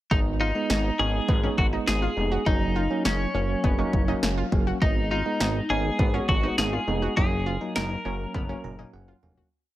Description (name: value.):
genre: synth-pop.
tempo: 102 BPM.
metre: 4/4.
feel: straight.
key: G# dorian.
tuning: A4 = 440 Hz.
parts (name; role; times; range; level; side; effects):
twelve-string electric guitar; melody; 0.1-8.9 s; C#4 to A#4; -28 LUFS; left 1 dB; none.
bell-like tine electric piano; accompaniment; 0.1-9.5 s; F#3 to A#5; -30 LUFS; right 2 dB; medium stereo tremolo.
analog pluck; arpeggios; 0.1-9.5 s; B3 to F#4; -35 LUFS; left 2 dB; chorus, tape echo.
chorused synth bass; bass; 0.1-9.4 s; E#1 to G#1; -28 LUFS; equal; none.
deep house drum kit; drums; 0.1-9.5 s; kick drum, snare drum, toms; -25 LUFS; equal; none.
room: little or no reverb.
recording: none.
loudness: -22 LUFS.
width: side -15 dB against mid.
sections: 0.1-9.5 verse.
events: fade-out 7.2-9.5; drum fill 8.3-9.5; tine electric piano fill 8.3-9.5.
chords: 0.1 G#m; 2.5 F#; 4.8 G#m; 7.2 F#.